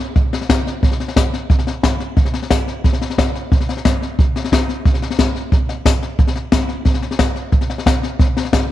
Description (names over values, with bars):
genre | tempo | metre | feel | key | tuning
rock | 179 BPM | 4/4 | straight | none | none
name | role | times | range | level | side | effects
jazz brush drum kit | drums | 0.2-8.6 s | hi-hat, kick drum, snare drum | -14 LUFS | equal | none
room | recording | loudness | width
light reverb | 1960s-style stereo | -15 LUFS | side -13 dB against mid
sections
0.0-8.7 A section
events
none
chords
none